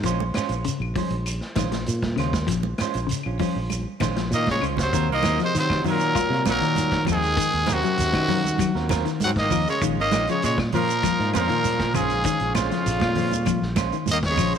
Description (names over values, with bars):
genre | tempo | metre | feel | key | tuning
afrobeat | 98 BPM | 4/4 | straight | Eb dorian | A4 = 440 Hz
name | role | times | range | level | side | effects
semi-hollow electric guitar | arpeggios | 0.0-14.5 s | Db3 to F4 | -29 LUFS | left 11 dB | none
fingered electric bass | bass | 0.0-14.5 s | Ab1 to Eb3 | -26 LUFS | equal | none
vintage drum kit | drums | 0.0-14.5 s | hi-hat, kick drum, snare drum | -30 LUFS | equal | none
semi-hollow electric guitar | stabs | 0.1-14.6 s | Gb3 to C5 | -31 LUFS | right 11 dB | spring reverb
shekere | percussion | 0.1-14.6 s | none | -33 LUFS | right 6 dB | none
congas | percussion | 0.2-14.5 s | none | -32 LUFS | right 9 dB | none
claves | percussion | 0.4-14.5 s | none | -38 LUFS | left 14 dB | none
growling trumpet | melody | 4.3-14.6 s | F4 to Gb5 | -24 LUFS | equal | tape echo
clear bass trombone | second line | 4.3-14.5 s | F2 to Gb3 | -31 LUFS | left 11 dB | none
raspy tenor saxophone | second line | 4.3-14.6 s | C3 to C4 | -31 LUFS | right 10 dB | none
room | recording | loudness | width
light reverb, small room ambience | 1960s-style stereo with parts hard left and right | -20 LUFS | side -8 dB against mid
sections
0.0-4.9 A section; 4.9-14.6 B section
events
drum fill 4.5-4.9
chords
0.0 Bbm9; 4.9 Ebm69; 9.8 Bbm9